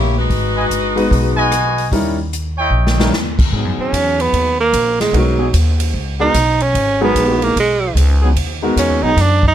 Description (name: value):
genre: jazz, big band swing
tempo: 149 BPM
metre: 4/4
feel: swing 65% on 8ths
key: G# minor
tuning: A4 = 441 Hz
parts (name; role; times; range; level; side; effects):
- bright saxophone section; melody; 0.0-1.7 s; G#3 to C#5; -19 LUFS; left 2 dB; none
- upright bass; bass; 0.0-9.5 s; G1 to G#2; -17 LUFS; equal; none
- swinging big-band drum kit; drums; 0.3-9.5 s; crash cymbal, hi-hat, kick drum, ride cymbal, rim click, snare drum; -21 LUFS; equal; none
- warm trumpet section; stabs; 0.6-3.1 s; E4 to G#5; -18 LUFS; equal; none
- clear grand piano; accompaniment; 1.0-9.1 s; G3 to B4; -18 LUFS; left 2 dB; none
- clear trombone section; sustained chords; 3.5-9.1 s; F#3 to G#4; -24 LUFS; left 1 dB; none
- clear tenor saxophone; melody; 3.8-9.5 s; F#3 to D#4; -15 LUFS; right 3 dB; none
room: little or no reverb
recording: close, detailed microphones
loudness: -13 LUFS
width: side -10 dB against mid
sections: 0.0-3.5 A section; 3.5-9.5 B section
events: drum fill 2.7-3.1; tenor saxophone solo 3.5-9.5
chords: 0.3 G#m7; 1.9 D#7b9; 3.5 G#m7